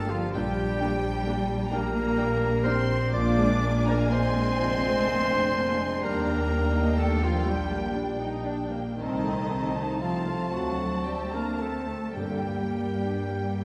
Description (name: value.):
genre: classical, slow romantic movement for symphony orchestra.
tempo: 36-45 BPM (dotted quarters).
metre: 6/8.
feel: rubato.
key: G minor.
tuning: A4 = 441 Hz.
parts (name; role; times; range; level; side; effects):
clear studio violin section; second line; 0.0-13.6 s; Eb5 to D6; -39 LUFS; equal; none.
warm clarinet; second line; 0.0-13.6 s; Eb4 to D5; -33 LUFS; equal; none.
mellow French horn section; sustained chords; 0.0-13.6 s; G3 to D4; -36 LUFS; equal; none.
rich studio cello section; bass; 0.0-13.6 s; Eb3 to D4; -35 LUFS; equal; none.
rich studio double bass section; bass; 0.0-13.6 s; F1 to G2; -32 LUFS; equal; none.
rich studio violin section; melody; 0.3-13.6 s; G5 to A5; -41 LUFS; equal; none.
rich studio viola section; accompaniment; 0.3-13.6 s; D3 to Eb4; -35 LUFS; equal; none.
timpani; percussion; 12.2-13.6 s; G2; -44 LUFS; equal; none.
room: wet scoring stage reverb, RT60 2.1 s.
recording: heard from further back in the room.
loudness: -27 LUFS.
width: mono.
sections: 0.0-13.6 A section.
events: none.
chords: 0.3 Gm/Bb; 3.1 Bb7; 6.0 Ebmaj7; 9.0 Adim/C; 10.5 D7; 12.2 Gm.